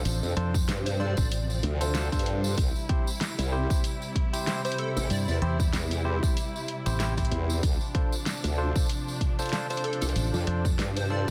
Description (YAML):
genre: glitch hop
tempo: 95 BPM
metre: 4/4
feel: swing 56% on 16ths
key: D minor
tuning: A4 = 439 Hz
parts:
  - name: dark studio string section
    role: sustained chords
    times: 0.0-11.3 s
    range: C3 to E4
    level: -38 LUFS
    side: equal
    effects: sidechain pumping
  - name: barky tine electric piano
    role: stabs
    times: 0.0-11.3 s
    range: C4 to C5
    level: -37 LUFS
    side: equal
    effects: overdrive, sidechain pumping, tape echo
  - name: formant-sweep wobble bass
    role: bass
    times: 0.0-11.3 s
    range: A1 to G2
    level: -30 LUFS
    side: equal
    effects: chorus, overdrive
  - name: fingered electric bass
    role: bass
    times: 0.1-11.3 s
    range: A1 to G2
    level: -31 LUFS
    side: equal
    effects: none
  - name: pop drum kit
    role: drums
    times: 0.1-11.1 s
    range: hi-hat, rim click, snare drum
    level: -36 LUFS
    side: equal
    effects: none
  - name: tambourine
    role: percussion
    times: 0.1-11.3 s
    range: none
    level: -42 LUFS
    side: equal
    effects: none
  - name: electronic kick drum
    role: drums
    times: 0.5-11.3 s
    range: none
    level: -30 LUFS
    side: equal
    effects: none
  - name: plucky unison lead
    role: melody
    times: 0.9-5.4, 9.7-11.3 s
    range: A4 to D5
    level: -40 LUFS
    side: equal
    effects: ensemble chorus, tape echo
room: light reverb, digital ambience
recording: dense, heavily limited modern master, vinyl crackle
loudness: -28 LUFS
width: mono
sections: 0.0-11.3 A section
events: none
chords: 0.0 Dm7; 2.6 C; 7.6 Dm7